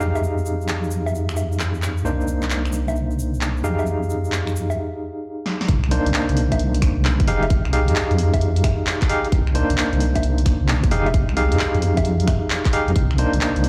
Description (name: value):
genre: UK garage, two-step garage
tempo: 132 BPM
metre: 4/4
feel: swing 66% on 16ths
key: C minor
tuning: A4 = 439 Hz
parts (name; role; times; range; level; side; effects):
- barky tine electric piano; stabs; 0.0-13.7 s; Bb3 to F5; -26 LUFS; equal; overdrive, fast tremolo, tape echo
- deep soft wobble bass; bass; 0.0-13.7 s; F1 to F2; -23 LUFS; equal; chorus
- egg shaker; percussion; 0.0-4.8 s; none; -43 LUFS; equal; none
- punchy analog drum machine; drums; 0.2-13.7 s; bongos, finger snaps, handclaps, hi-hat, snare drum; -29 LUFS; equal; none
- electronic kick drum; drums; 5.7-13.1 s; none; -22 LUFS; equal; none
room: light reverb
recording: played on a big sound system in a bare room, large studio reverb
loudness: -20 LUFS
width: mono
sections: 0.0-5.7 A section; 5.7-13.7 B section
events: filter sweep on tine electric piano 0.0-5.7; break 4.8-5.7; drum fill 5.5; drop 5.7-13.7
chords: 0.0 Fm9; 2.0 Cm9; 3.6 Fm9; 5.7 Cm9; 7.3 Fm9; 9.3 Cm9; 10.9 Fm9; 13.0 Cm9